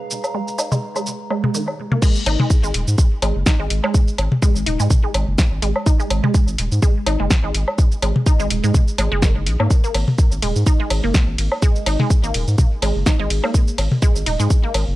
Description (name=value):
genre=minimal techno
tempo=125 BPM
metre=4/4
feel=swing 56% on 16ths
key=G# dorian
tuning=A4 = 440 Hz
part: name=warbly tape-like pad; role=texture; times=0.0-2.0 s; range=G#4 to A#5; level=-32 LUFS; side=right 2 dB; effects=chorus, built-in reverb, sidechain pumping
part: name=house drum kit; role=drums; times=0.1-14.9 s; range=crash cymbal, hi-hat, ride cymbal, shaker, snare drum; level=-24 LUFS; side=equal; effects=studio reverb
part: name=electronic woodblock and toms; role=percussion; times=0.2-14.9 s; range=none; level=-22 LUFS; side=left 1 dB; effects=studio reverb, tape echo
part: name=resonant blip pluck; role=riff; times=0.3-14.7 s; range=D#3 to D#4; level=-24 LUFS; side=right 1 dB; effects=phaser, sidechain pumping, tape echo
part: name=electronic kick drum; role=drums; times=2.0-14.6 s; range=none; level=-15 LUFS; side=equal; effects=studio reverb
part: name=saturated sub bass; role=bass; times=2.3-15.0 s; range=D#1 to G#2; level=-20 LUFS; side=equal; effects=sidechain pumping
room=digital ambience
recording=dry, gritty hardware recording, cassette tape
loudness=-16 LUFS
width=side -17 dB against mid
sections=0.0-2.0 A section; 2.0-15.0 B section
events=filter sweep on synth pluck 0.0-2.0; drop 2.0-15.0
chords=0.0 G#m; 2.0 N.C.